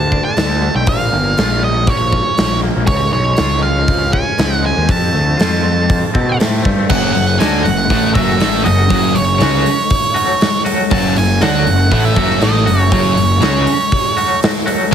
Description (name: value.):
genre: quiet-loud alternative rock.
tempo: 120 BPM.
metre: 4/4.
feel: straight.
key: unclear.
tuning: A4 = 441 Hz.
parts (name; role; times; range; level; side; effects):
octave-fuzz lead guitar; melody; 0.0-14.4 s; C#5 to A5; -18 LUFS; right 3 dB; distortion.
twangy electric guitar; arpeggios; 0.0-14.9 s; F2 to F#4; -22 LUFS; left 2 dB; tremolo.
fuzz picked electric bass; bass; 0.0-13.7 s; F#1 to B2; -17 LUFS; left 1 dB; overdrive.
big rock drum kit; drums; 0.1-14.9 s; crash cymbal, hi-hat, kick drum, snare drum; -17 LUFS; equal; none.
heavy high-gain guitar; riff; 6.9-14.9 s; F#2 to D4; -18 LUFS; left 8 dB; distortion.
thick fuzz guitar; riff; 6.9-14.9 s; F#2 to D4; -17 LUFS; right 7 dB; distortion.
room: light reverb, small room ambience.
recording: heavily compressed radio sound, multiband compression.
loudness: -11 LUFS.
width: side -8 dB against mid.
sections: 0.0-6.9 A section; 6.9-14.9 B section.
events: none.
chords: 0.0 Dm; 0.9 A#m; 2.9 C#; 4.9 F; 6.9 F#m.